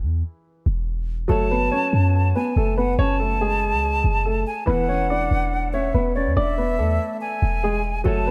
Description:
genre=hip hop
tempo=142 BPM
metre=4/4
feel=half-time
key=unclear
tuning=A4 = 439 Hz
part: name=felt-muted upright piano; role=accompaniment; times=0.0-8.3 s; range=E3 to C#5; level=-31 LUFS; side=equal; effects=low-pass filter
part: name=clean 808-style bass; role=bass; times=0.0-8.3 s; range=E1 to F#2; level=-24 LUFS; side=equal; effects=none
part: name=dark baby grand piano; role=melody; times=1.3-8.3 s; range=G#3 to D5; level=-26 LUFS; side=equal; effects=low-pass filter, delay
part: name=hollow concert flute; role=second line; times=1.3-8.3 s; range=D5 to A5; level=-28 LUFS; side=equal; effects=delay
room=moderate plate reverb, RT60 2.7 s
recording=dreamy mix soaked in reverb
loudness=-22 LUFS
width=mono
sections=0.0-1.3 A section; 1.3-8.3 B section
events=none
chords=0.0 E; 1.3 F#m; 4.7 E

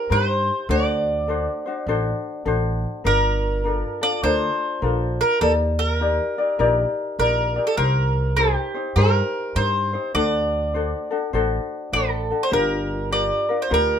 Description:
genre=Hawaiian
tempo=101 BPM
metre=4/4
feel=swing 63% on 8ths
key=G minor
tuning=A4 = 445 Hz
part: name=mandolin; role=melody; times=0.0-14.0 s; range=G4 to D5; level=-23 LUFS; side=right 2 dB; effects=none
part: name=ukulele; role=accompaniment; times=0.0-14.0 s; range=D4 to D5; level=-24 LUFS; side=left 5 dB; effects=none
part: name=upright bass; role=bass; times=0.1-14.0 s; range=G1 to G2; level=-23 LUFS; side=right 1 dB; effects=none
room=moderate studio reverb, RT60 0.7 s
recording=minimal, uncompressed stereo recording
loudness=-19 LUFS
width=side -8 dB against mid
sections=0.0-14.0 A section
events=none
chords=0.0 Cm7; 0.7 D7; 3.0 Gm9; 5.4 Ebmaj7; 7.8 Cm7; 10.2 D7; 12.5 Gm7

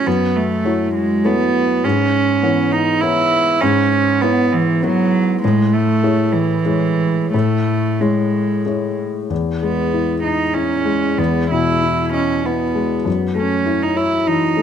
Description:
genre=neoclassical piano and strings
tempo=86-103 BPM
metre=3/4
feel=rubato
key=unclear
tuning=A4 = 440 Hz
part: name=clear cello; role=second line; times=0.0-14.6 s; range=E3 to E4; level=-17 LUFS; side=right 4 dB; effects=none
part: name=felt-muted upright piano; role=accompaniment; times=0.0-14.6 s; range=E2 to D#5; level=-18 LUFS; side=left 4 dB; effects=none
room=light reverb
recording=close, detailed microphones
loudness=-15 LUFS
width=side -8 dB against mid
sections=0.0-9.3 A section; 9.3-14.6 B section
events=none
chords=0.0 F#m7; 1.8 C#m7/G#; 5.4 Amaj7; 9.3 Emaj7; 13.1 F#m7

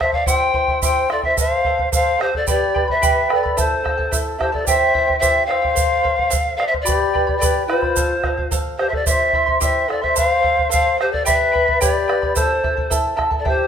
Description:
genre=andean folk, Andean ensemble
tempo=109 BPM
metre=2/4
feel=straight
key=unclear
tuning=A4 = 440 Hz
part: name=breathy bright pan flute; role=melody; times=0.0-13.7 s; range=C5 to G5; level=-19 LUFS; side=equal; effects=none
part: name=breathy large quena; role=second line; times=0.0-13.7 s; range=F4 to D5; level=-23 LUFS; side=left 6 dB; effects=none
part: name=charango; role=accompaniment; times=0.0-13.7 s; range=E4 to C6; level=-22 LUFS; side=right 2 dB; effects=none
part: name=bombo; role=percussion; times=0.0-13.6 s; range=none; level=-24 LUFS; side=right 1 dB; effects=none
part: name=tube shaker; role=percussion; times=0.3-13.0 s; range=none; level=-25 LUFS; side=right 9 dB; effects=none
room=moderate recital hall reverb, RT60 1.3 s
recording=minimal, uncompressed stereo recording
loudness=-15 LUFS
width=side -8 dB against mid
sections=0.0-4.7 A section; 4.7-13.5 A section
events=none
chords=0.3 C; 1.4 F; 2.5 G; 3.6 Am; 4.7 C; 5.8 F; 6.9 G; 8.0 F; 9.1 C; 10.2 F; 11.3 G; 12.4 Am

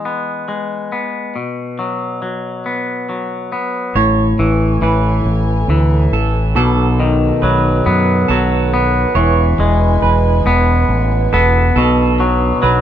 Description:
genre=rock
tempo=46 BPM (dotted quarters)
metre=6/8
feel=straight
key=A major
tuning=A4 = 438 Hz
part: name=twangy electric guitar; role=arpeggios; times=0.0-12.8 s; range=A2 to B3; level=-16 LUFS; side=left 2 dB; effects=none
part: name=dark chamber string section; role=sustained chords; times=4.0-12.8 s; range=D3 to G#5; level=-23 LUFS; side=right 4 dB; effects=none
part: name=clean electric guitar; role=arpeggios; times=4.0-12.8 s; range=A4 to C#5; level=-20 LUFS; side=right 8 dB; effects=tremolo
part: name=growling fingered electric bass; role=bass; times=4.0-12.8 s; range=E1 to F#2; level=-15 LUFS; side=equal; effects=overdrive
room=moderate large studio reverb, RT60 1.1 s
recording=band playing live in one room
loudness=-13 LUFS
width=side -10 dB against mid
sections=0.0-4.0 A section; 4.0-12.8 B section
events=none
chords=0.0 E; 1.3 B5; 4.0 Amaj7; 6.6 B7; 9.2 E; 11.8 Bm

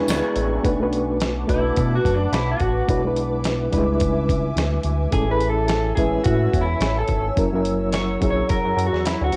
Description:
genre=indie pop, bedroom pop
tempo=107 BPM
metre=4/4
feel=swing 60% on 16ths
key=unclear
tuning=A4 = 440 Hz
part: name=electric guitar through a small old amp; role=accompaniment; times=0.0-9.4 s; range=E3 to C#5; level=-27 LUFS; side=equal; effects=analog chorus, vibrato effect, cassette tape
part: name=reed electric piano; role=accompaniment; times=0.0-9.4 s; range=F#3 to B4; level=-26 LUFS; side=equal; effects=fast tremolo, cassette tape
part: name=ethereal airy pad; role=sustained chords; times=0.0-9.4 s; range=B4 to E6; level=-32 LUFS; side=equal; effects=ensemble chorus, built-in reverb, cassette tape
part: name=chorused synth bass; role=bass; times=0.0-9.4 s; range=F#1 to B2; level=-26 LUFS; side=equal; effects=none
part: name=dusty soul sampler-style drum kit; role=drums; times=0.1-9.4 s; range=hi-hat, kick drum, snare drum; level=-28 LUFS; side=equal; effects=cassette tape
room=light reverb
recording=home recording on cassette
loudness=-21 LUFS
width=mono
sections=0.6-9.4 A section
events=clean electric guitar solo 0.6-9.4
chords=0.0 E7; 0.6 Bm7; 2.9 E7/B; 5.1 Amaj7; 7.4 F#7

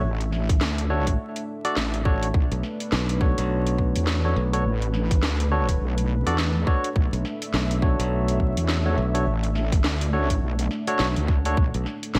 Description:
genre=glitch hop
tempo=104 BPM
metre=4/4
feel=swing 59% on 16ths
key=B minor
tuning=A4 = 439 Hz
part: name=dark analog pad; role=sustained chords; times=0.0-12.2 s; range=A3 to E5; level=-34 LUFS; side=equal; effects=chorus, vintage 12-bit sampler grit, sidechain pumping
part: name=wobble bass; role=bass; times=0.0-11.7 s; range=A1 to E2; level=-27 LUFS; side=equal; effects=chorus, overdrive
part: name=drum and bass drum kit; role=drums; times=0.2-12.2 s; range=hi-hat, snare drum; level=-32 LUFS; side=equal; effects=gated reverb
part: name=electronic kick drum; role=drums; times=0.5-11.7 s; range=none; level=-24 LUFS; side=equal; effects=none
part: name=barky tine electric piano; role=stabs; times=0.9-11.6 s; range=D4 to D5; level=-31 LUFS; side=equal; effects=sidechain pumping, digital delay
part: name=modern bright fingered electric bass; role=bass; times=2.5-12.2 s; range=B1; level=-26 LUFS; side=equal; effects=none
room=light reverb, digital ambience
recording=bright 1980s-style digital production, vinyl crackle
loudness=-24 LUFS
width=mono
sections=0.0-12.2 A section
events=none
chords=0.0 Bm7

